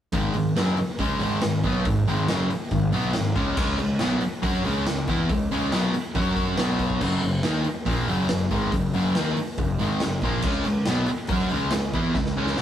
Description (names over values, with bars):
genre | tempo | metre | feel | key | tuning
hard rock | 140 BPM | 4/4 | straight | unclear | A4 = 440 Hz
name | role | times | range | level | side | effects
cranked stack guitar | riff | 0.1-12.6 s | Gb2 to Gb4 | -28 LUFS | left 4 dB | overdrive
sludgy distorted guitar | riff | 0.1-12.6 s | Gb2 to Gb4 | -25 LUFS | right 2 dB | overdrive
fuzz picked electric bass | bass | 0.1-12.6 s | Gb1 to Gb2 | -30 LUFS | equal | overdrive
raw garage drum kit | drums | 0.1-12.6 s | crash cymbal, hi-hat, kick drum, snare drum | -28 LUFS | equal | none
room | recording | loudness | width
moderate small room reverb, RT60 0.6 s | rough rehearsal-room recording | -21 LUFS | side -10 dB against mid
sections
0.1-12.6 A section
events
drum fill 12.2-12.6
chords
0.1 Ab5; 3.6 Db5; 6.2 Gb5; 6.6 B5; 7.0 Gb5; 10.4 Db5